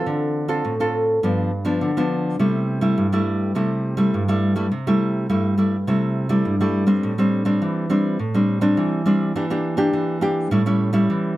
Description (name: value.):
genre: samba.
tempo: 103 BPM.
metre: 4/4.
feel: straight.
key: C major, A minor from 7.0 s.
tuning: A4 = 442 Hz.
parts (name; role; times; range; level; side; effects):
nylon-string guitar; solo; 0.0-11.4 s; G2 to A4; -18 LUFS; equal; none.
room: moderate studio reverb, RT60 0.7 s.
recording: none.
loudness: -18 LUFS.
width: side -16 dB against mid.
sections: 0.0-7.0 A section; 7.0-11.4 B section.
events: none.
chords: 0.1 Dm7; 1.2 G7; 2.4 C6; 7.0 Am7; 9.4 Em7b5; 10.5 A7.